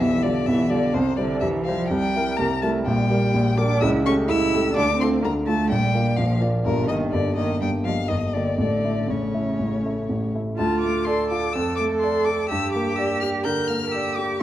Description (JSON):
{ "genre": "quick classical-period movement for piano trio", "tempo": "126 BPM", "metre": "4/4", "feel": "straight", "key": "D minor", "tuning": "A4 = 439 Hz", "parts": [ { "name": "rich violin", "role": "melody", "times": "0.0-14.4 s", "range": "Bb4 to G6", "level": "-28 LUFS", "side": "left 6 dB", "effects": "none" }, { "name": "rich cello", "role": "second line", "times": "0.0-14.4 s", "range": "Bb2 to Bb4", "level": "-26 LUFS", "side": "right 4 dB", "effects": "none" }, { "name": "warm baby grand piano", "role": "accompaniment", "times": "0.0-14.4 s", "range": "G1 to E5", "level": "-22 LUFS", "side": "equal", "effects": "none" } ], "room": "moderate recital hall reverb, RT60 1.4 s", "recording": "worn, warbling old tape, cassette tape, warbly pitch drift", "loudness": "-20 LUFS", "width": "side -13 dB against mid", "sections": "0.0-10.6 A section; 10.6-14.4 B section", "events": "none", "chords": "0.0 G7/B; 1.0 C; 1.9 C7; 2.9 Gm/Bb; 3.8 A7/C#; 4.8 Dm; 5.7 Bb; 6.7 Eb/G; 8.6 A; 10.6 Dm; 11.5 Dm/F; 12.5 Gm" }